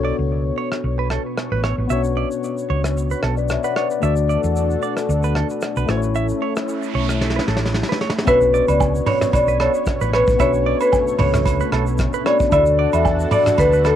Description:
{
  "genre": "afrobeats",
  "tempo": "113 BPM",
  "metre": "4/4",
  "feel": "swing 55% on 16ths",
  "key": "B minor",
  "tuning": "A4 = 441 Hz",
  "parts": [
    { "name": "tine electric piano", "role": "accompaniment", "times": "0.0-14.0 s", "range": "A3 to F#5", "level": "-24 LUFS", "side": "left 9 dB", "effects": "medium stereo tremolo, cassette tape" },
    { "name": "lush unison pad", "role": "sustained chords", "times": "0.0-14.0 s", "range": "B2 to C#5", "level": "-28 LUFS", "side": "right 1 dB", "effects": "chorus, cassette tape" },
    { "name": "direct-recorded clean electric guitar", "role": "riff", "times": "0.0-14.0 s", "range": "A4 to E5", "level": "-27 LUFS", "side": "right 11 dB", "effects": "warbly pitch drift, cassette tape, analog delay" },
    { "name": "hollow-body short-scale fingered electric bass", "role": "bass", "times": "0.0-13.9 s", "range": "A1 to E2", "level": "-21 LUFS", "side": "equal", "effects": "none" },
    { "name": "soft brush drum kit", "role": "drums", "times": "0.7-14.0 s", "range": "hi-hat, kick drum, rim click, shaker, snare drum, toms", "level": "-24 LUFS", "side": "equal", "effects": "none" },
    { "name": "noise sweep and impact", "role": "sound effects", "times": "6.5-10.4 s", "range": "none", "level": "-35 LUFS", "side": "right 3 dB", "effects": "none" },
    { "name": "marimba with medium mallets", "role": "melody", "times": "8.3-14.0 s", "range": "A4 to E5", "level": "-18 LUFS", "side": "equal", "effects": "cassette tape" },
    { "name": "agogo bells and woodblock", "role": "percussion", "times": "8.3-14.0 s", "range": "none", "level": "-27 LUFS", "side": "right 11 dB", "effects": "none" }
  ],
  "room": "moderate booth ambience, RT60 0.2 s",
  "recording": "home recording on cassette",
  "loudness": "-16 LUFS",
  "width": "side -10 dB against mid",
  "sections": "0.0-8.3 A section; 8.3-14.0 B section",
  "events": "noise sweep 6.5-8.3; drum fill 7.2-8.3; impact 8.3-10.4",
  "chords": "0.0 Bmadd9; 4.0 D; 5.9 A; 8.3 Bmadd9; 12.5 D"
}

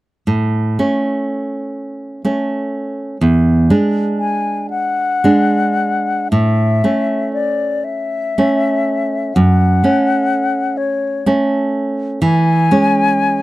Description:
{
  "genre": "romantic duo for flute and classical guitar",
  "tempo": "36-43 BPM (dotted quarters)",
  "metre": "6/8",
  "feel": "rubato",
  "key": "A major",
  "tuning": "A4 = 438 Hz",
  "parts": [
    { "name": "nylon-string guitar", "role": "accompaniment", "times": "0.3-13.4 s", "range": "E2 to D4", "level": "-15 LUFS", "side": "right 1 dB", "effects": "none" },
    { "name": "mellow silver concert flute", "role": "melody", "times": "4.2-13.4 s", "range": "C#5 to G#5", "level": "-18 LUFS", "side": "left 4 dB", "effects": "none" }
  ],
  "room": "light reverb",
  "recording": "dry, close 1970s-style studio recording",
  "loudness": "-13 LUFS",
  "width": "side -17 dB against mid",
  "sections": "0.3-6.3 A section; 6.3-13.4 B section",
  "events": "none",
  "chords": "0.3 A; 3.2 E7; 6.3 A; 9.3 F#m; 12.2 C#m/E"
}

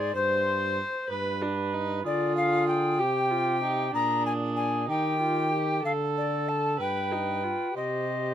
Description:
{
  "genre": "classical, renaissance-style consort dance",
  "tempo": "63 BPM (dotted quarters)",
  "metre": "6/8",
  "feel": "straight",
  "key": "unclear",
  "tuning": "A4 = 440 Hz",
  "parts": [
    { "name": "mellow alto recorder", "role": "melody", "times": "0.0-8.3 s", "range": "C5 to Bb5", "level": "-28 LUFS", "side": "left 4 dB", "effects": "none" },
    { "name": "mellow cor anglais", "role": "second line", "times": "0.0-8.3 s", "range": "G4 to C5", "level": "-32 LUFS", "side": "right 8 dB", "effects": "none" },
    { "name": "warm viola", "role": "accompaniment", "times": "0.0-8.3 s", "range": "D4 to C5", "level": "-31 LUFS", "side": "left 1 dB", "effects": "none" },
    { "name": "warm trombone", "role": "bass", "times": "0.0-8.3 s", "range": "G2 to Eb3", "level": "-32 LUFS", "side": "right 2 dB", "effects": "none" }
  ],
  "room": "light reverb",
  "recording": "close, detailed microphones",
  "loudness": "-25 LUFS",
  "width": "side -10 dB against mid",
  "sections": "0.0-8.3 A section",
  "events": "none",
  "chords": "0.2 Gsus4; 1.1 G; 2.1 Ddim; 3.0 C5; 3.9 Bb7; 4.9 Eb; 5.8 D5; 6.8 G; 7.8 Cm"
}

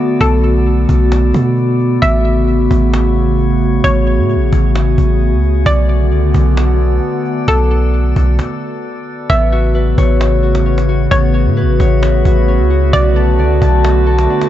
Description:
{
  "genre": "hip hop, atmospheric cloud-rap",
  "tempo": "132 BPM",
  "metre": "4/4",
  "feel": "half-time",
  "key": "A major",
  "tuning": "A4 = 440 Hz",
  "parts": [
    { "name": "hollow square pluck", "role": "melody", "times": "0.0-14.5 s", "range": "A4 to E5", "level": "-20 LUFS", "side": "equal", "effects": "chorus, low-pass filter, tape echo" },
    { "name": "warbly tape-like pad", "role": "sustained chords", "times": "0.0-14.5 s", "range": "C#3 to F#4", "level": "-16 LUFS", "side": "equal", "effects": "chorus, built-in reverb" },
    { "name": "drifting glass-harmonics texture", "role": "texture", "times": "0.0-14.5 s", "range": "B3 to D5", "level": "-25 LUFS", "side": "left 3 dB", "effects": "chorus, built-in reverb" },
    { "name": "warm 808-style bass", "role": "bass", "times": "0.2-14.3 s", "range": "A1 to B2", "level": "-12 LUFS", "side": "equal", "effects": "none" },
    { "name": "cajon", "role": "drums", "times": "0.2-14.5 s", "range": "none", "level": "-22 LUFS", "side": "equal", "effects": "none" },
    { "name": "concert harp", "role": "arpeggios", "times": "9.3-14.5 s", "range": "B3 to A5", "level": "-20 LUFS", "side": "left 7 dB", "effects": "low-pass filter, tape echo" }
  ],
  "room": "light reverb, studio ambience",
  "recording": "nothing above 7.8 kHz",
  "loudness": "-10 LUFS",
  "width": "side -12 dB against mid",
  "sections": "0.0-9.3 A section; 9.3-14.5 B section",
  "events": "stop 8.4-9.3",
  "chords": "0.0 Bm7; 2.0 A69; 5.7 Bm7; 9.3 A69; 12.9 Bm7"
}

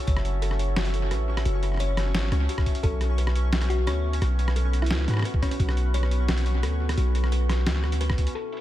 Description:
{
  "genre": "half-time drum and bass",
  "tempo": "174 BPM",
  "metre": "4/4",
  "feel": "half-time",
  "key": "unclear",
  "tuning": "A4 = 441 Hz",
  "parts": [
    { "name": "deep dark ambient pad", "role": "sustained chords", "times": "0.0-8.6 s", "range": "B3 to A5", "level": "-35 LUFS", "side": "right 1 dB", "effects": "chorus, built-in reverb, vintage 12-bit sampler grit, sidechain pumping" },
    { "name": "pulsing gated texture", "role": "texture", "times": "0.0-8.6 s", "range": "C#4 to C#6", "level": "-37 LUFS", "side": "equal", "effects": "chorus, built-in reverb" },
    { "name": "kalimba", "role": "arpeggios", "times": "0.1-8.2 s", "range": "C#4 to C#5", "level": "-35 LUFS", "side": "left 5 dB", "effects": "dub echo" },
    { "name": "long sustained 808-style bass", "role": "bass", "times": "0.1-8.3 s", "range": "F#1 to G#2", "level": "-24 LUFS", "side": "equal", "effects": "none" },
    { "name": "boom bap sampler-style drum kit", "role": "drums", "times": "0.1-8.6 s", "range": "hi-hat, rim click, snare drum", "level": "-32 LUFS", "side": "equal", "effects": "low-pass filter on hats, studio reverb, low-pass filter on snare, tape echo" },
    { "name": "electronic kick drum", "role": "drums", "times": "0.1, 2.6-2.9, 5.3-5.7, 8.1-8.3 s", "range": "none", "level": "-25 LUFS", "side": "equal", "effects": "studio reverb" },
    { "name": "thumb-piano-like synth pluck", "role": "melody", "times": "2.8-5.6, 8.3-8.6 s", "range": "C#4 to A4", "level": "-37 LUFS", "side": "left 2 dB", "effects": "chorus, dub echo" }
  ],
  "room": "light reverb, digital ambience",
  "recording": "echo-heavy mix",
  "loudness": "-22 LUFS",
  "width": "side -14 dB against mid",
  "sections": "0.0-8.4 A section",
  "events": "drop 0.0-8.4",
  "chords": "0.0 F#m7; 2.8 Bm"
}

